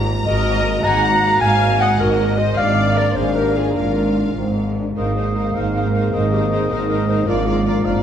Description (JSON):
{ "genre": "cinematic", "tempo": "104 BPM (dotted quarters)", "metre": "6/8", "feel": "straight", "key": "Ab lydian", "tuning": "A4 = 440 Hz", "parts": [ { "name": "rich studio violin section", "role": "melody", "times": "0.0-8.0 s", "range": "C5 to Bb5", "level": "-30 LUFS", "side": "left 4 dB", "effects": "none" }, { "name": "dark French horn section", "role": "sustained chords", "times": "0.0-8.0 s", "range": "Bb3 to Ab4", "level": "-25 LUFS", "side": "left 2 dB", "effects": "none" }, { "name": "rich symphonic cello section", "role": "bass", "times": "0.0-8.0 s", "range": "Ab2", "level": "-22 LUFS", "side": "right 1 dB", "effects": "none" }, { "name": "rich symphonic double bass section", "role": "bass", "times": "0.0-8.0 s", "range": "Ab1", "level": "-22 LUFS", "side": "right 2 dB", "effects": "none" }, { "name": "dark clarinet", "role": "second line", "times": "0.3-8.0 s", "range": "G4 to Bb5", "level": "-22 LUFS", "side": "left 1 dB", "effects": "none" }, { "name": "warm symphonic violin section", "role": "second line", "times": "0.3-8.0 s", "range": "Ab4 to Bb5", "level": "-27 LUFS", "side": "equal", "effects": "none" }, { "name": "rich symphonic viola section", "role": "accompaniment", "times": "0.3-8.0 s", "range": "Eb4 to Gb5", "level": "-25 LUFS", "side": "right 1 dB", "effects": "none" }, { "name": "mellow hollow small flute group", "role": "second line", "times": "5.0-8.0 s", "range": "Eb5 to F5", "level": "-28 LUFS", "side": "equal", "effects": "none" }, { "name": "mellow oboe", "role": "second line", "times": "5.0-8.0 s", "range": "D5 to F5", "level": "-28 LUFS", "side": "left 2 dB", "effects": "none" }, { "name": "mellow trombone section", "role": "sustained chords", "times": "5.0-8.0 s", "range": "Eb3 to Bb3", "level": "-26 LUFS", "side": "right 1 dB", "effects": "none" } ], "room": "wet scoring stage reverb, RT60 1.7 s", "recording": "dark, warm production", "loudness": "-15 LUFS", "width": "side -9 dB against mid", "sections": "0.0-5.0 A section; 5.0-8.0 B section", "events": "none", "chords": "0.3 Ebm/Ab; 2.6 Bb/Ab; 5.0 Abadd9; 7.3 Bb/Ab", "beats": "| 0.27 0.85 | 1.42 2.00 | 2.58 3.17 | 3.77 4.37 | 4.97 5.55 | 6.13 6.70 | 7.27 7.85" }